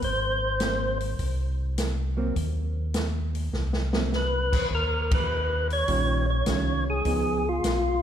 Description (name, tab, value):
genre	soul jazz organ trio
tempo	102 BPM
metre	4/4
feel	swing 69% on 8ths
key	unclear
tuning	A4 = 441 Hz
part	percussive tonewheel organ	melody	0.0-8.0 s	F4 to Db5	-27 LUFS	left 1 dB	slow rotary speaker
part	mellow tonewheel organ	bass	0.0-8.0 s	Ab1 to Eb2	-28 LUFS	equal	overdrive, chorus vibrato, slow rotary speaker
part	open jazz drum kit	drums	0.0-7.8 s	crash cymbal, hi-hat, kick drum, ride cymbal, snare drum	-30 LUFS	equal	none
part	hollow-body jazz guitar	accompaniment	0.6-7.4 s	Eb3 to F4	-32 LUFS	right 4 dB	none
room	moderate concert hall reverb, RT60 2.0 s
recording	recorded in a church or concert hall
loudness	-24 LUFS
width	side -9 dB against mid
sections	0.0-8.0 A section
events	drum fill 3.5-4.1; band accent 5.0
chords	0.0 Ab9; 4.7 Eb9; 7.1 Db9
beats	| 0.02 0.60 1.19 1.77 | 2.36 2.95 3.53 4.12 | 4.71 5.29 5.88 6.47 | 7.05 7.64